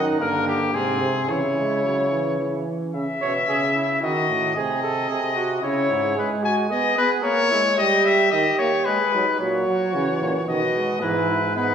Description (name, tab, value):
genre	classical, imitative canzona for brass ensemble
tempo	111 BPM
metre	3/4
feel	straight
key	C# minor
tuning	A4 = 441 Hz
part	clear trumpet	melody	0.0-11.7 s	G4 to G#5	-22 LUFS	left 4 dB	none
part	warm flugelhorn	second line	0.0-11.7 s	Bb3 to C#5	-26 LUFS	right 4 dB	none
part	warm trombone	accompaniment	0.0-2.9, 6.2-11.7 s	B#2 to E4	-25 LUFS	right 2 dB	none
part	clear euphonium	bass	0.0-6.2, 9.4-11.7 s	F#2 to F#3	-27 LUFS	right 2 dB	none
room	wet recital hall reverb, RT60 1.8 s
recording	recorded in a church or concert hall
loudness	-19 LUFS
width	side -8 dB against mid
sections	0.0-2.9 A section; 2.9-9.4 B section; 9.4-11.7 A section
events	none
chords	0.2 Gm; 0.7 G#; 1.3 C#m; 4.0 D#dim; 4.6 G#/B#; 5.6 C#m; 6.2 G#m; 7.2 A#dim; 7.8 D#/G; 8.9 G#m; 9.4 F#/A#; 10.5 B; 11.0 E/G#